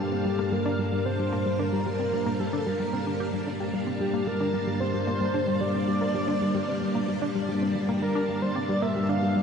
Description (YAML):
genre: ambient, sequencer-driven space music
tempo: 112 BPM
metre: 4/4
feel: straight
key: G minor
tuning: A4 = 441 Hz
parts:
  - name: pulse-width lead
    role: melody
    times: 0.0-9.4 s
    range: G4 to F5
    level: -30 LUFS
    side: equal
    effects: chorus, ping-pong delay
  - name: string machine, full ensemble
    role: sustained chords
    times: 0.0-9.4 s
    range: G3 to A5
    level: -28 LUFS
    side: equal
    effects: ensemble chorus
  - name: analog pluck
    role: riff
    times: 0.0-9.4 s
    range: G3 to G4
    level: -31 LUFS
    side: equal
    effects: chorus, ping-pong delay
  - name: analog drone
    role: bass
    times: 0.0-9.4 s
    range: G2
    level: -34 LUFS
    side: equal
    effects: chorus
room: wet huge ambient reverb, RT60 8.3 s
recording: dark, warm production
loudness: -24 LUFS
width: side -6 dB against mid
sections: 0.0-9.4 A section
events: none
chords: 0.0 Gm7